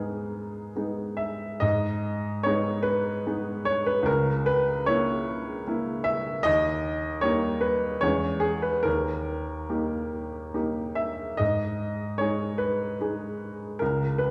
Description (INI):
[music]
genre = classical, romantic character piece for solo piano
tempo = 66-77 BPM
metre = 3/4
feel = rubato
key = G# minor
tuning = A4 = 440 Hz
[part]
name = warm upright piano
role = solo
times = 0.0-14.3 s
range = C#2 to E5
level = -27 LUFS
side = equal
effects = none
[sound]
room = wet recital hall reverb, RT60 1.6 s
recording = heard from further back in the room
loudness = -27 LUFS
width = mono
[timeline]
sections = 0.0-1.6 A section; 1.6-14.3 A section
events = none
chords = 0.0 G#m; 4.1 A#dim/C#; 6.4 D#; 8.0 C#m/E; 8.9 D#; 11.4 G#m